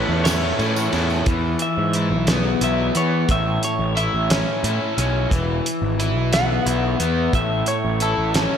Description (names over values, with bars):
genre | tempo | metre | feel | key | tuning
indie rock | 59 BPM (dotted quarters) | 6/8 | straight | A major | A4 = 440 Hz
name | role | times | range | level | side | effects
semi-hollow electric guitar | melody | 0.0-8.6 s | A4 to F#5 | -25 LUFS | equal | phaser, slapback echo, analog delay
overdriven semi-hollow guitar | riff | 0.0-8.6 s | A2 to E4 | -22 LUFS | left 2 dB | none
fuzz picked electric bass | bass | 0.0-8.5 s | E1 to E3 | -22 LUFS | right 1 dB | overdrive
cloth-damped thuddy drum kit | drums | 0.3-8.5 s | hi-hat, kick drum, ride cymbal, snare drum | -24 LUFS | right 1 dB | none
tambourine | percussion | 0.3-1.2 s | none | -34 LUFS | right 8 dB | none
room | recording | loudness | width
moderate scoring stage reverb, RT60 1.7 s, small room ambience | big arena sound | -18 LUFS | side -8 dB against mid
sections
0.0-1.3 A section; 1.3-8.6 B section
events
clean electric guitar solo 1.3-8.6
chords
0.0 A; 1.3 E; 3.3 A; 5.3 E; 7.3 A